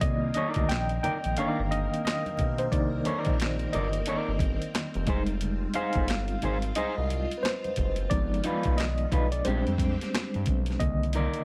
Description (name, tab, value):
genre	R&B, neo-soul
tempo	89 BPM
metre	4/4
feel	swing 62% on 16ths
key	C minor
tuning	A4 = 439 Hz
part	tine electric piano	accompaniment	0.0-11.4 s	D3 to G5	-33 LUFS	equal	medium tremolo
part	phased string machine	sustained chords	0.0-10.8 s	D3 to Bb4	-43 LUFS	equal	ensemble chorus, phaser
part	smooth synth bass	bass	0.0-11.3 s	F1 to G2	-33 LUFS	equal	none
part	boom bap sampler-style drum kit	drums	0.0-11.4 s	handclaps, hi-hat, kick drum, snare drum	-32 LUFS	equal	none
part	congas	percussion	0.0-11.3 s	none	-44 LUFS	equal	none
part	electric guitar through a small old amp	second line	0.4-11.4 s	Ab3 to D5	-34 LUFS	equal	none
room	light reverb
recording	none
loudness	-28 LUFS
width	mono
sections	0.0-10.8 A section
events	tine electric piano solo 0.0-10.8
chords	0.0 Cm9; 5.1 Fm7; 8.1 G7b9b13; 9.5 Bb13; 10.8 Cm9